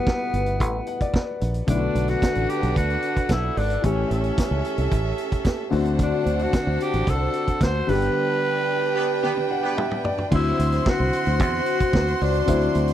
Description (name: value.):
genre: disco.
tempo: 111 BPM.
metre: 4/4.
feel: straight.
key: unclear.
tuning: A4 = 440 Hz.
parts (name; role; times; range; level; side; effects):
raspy tenor saxophone; melody; 0.0-12.9 s; B3 to C5; -26 LUFS; left 1 dB; tape echo.
warm grand piano; accompaniment; 0.0-12.9 s; B2 to F#5; -28 LUFS; left 5 dB; none.
mellow French horn section; sustained chords; 0.0-12.9 s; C#3 to B4; -30 LUFS; right 2 dB; stereo widening.
vintage drum kit; drums; 0.1-12.9 s; crash cymbal, hi-hat, kick drum, snare drum, toms; -24 LUFS; right 1 dB; none.
fingered electric bass; bass; 0.3-12.9 s; G1 to E2; -24 LUFS; right 1 dB; none.
warm studio violin section; second line; 1.7-12.9 s; C#4 to C6; -30 LUFS; right 3 dB; none.
warm horn section; stabs; 9.0-10.0 s; B3 to B4; -28 LUFS; right 2 dB; none.
room: little or no reverb.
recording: dry, close 1970s-style studio recording.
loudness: -20 LUFS.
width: side -11 dB against mid.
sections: 0.0-1.7 A section; 1.7-10.3 B section; 10.3-12.9 C section.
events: grand piano fill 0.6-1.7, 9.2-10.3; band accent 8.2-10.3; drum fill 9.2-10.3.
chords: 0.0 Gmaj9; 1.7 Bm7; 3.8 A7; 5.7 D7; 7.9 G; 10.3 D9.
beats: 0.06 0.60 1.14 | 1.68 2.22 2.76 3.29 | 3.83 4.38 4.92 5.46 | 6.00 6.54 7.08 7.62 | 8.16 8.70 9.24 9.78 | 10.32 10.86 11.40 11.94 | 12.48.